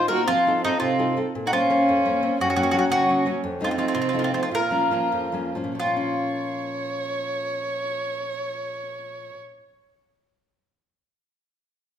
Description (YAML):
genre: italian folk, Italian serenade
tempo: 84-115 BPM (dotted quarters)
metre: 6/8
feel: straight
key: Bb harmonic minor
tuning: A4 = 441 Hz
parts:
  - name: mandolin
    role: melody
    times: 0.0-9.5 s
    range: Eb4 to Bb4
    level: -23 LUFS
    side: left 2 dB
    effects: none
  - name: dark violin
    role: second line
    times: 0.0-9.4 s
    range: C4 to Db5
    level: -26 LUFS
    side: right 4 dB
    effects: none
  - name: nylon-string guitar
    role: accompaniment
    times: 0.0-9.6 s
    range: F2 to C5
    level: -28 LUFS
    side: left 2 dB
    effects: none
room: moderate recital hall reverb, RT60 1.4 s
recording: minimal, uncompressed stereo recording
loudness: -21 LUFS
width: side -9 dB against mid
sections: 0.0-5.8 A section; 5.8-8.6 B section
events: slowing down 3.4-5.8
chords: 0.3 F7; 1.3 Bbmadd9; 2.4 Gb; 3.4 F7; 4.5 Bbm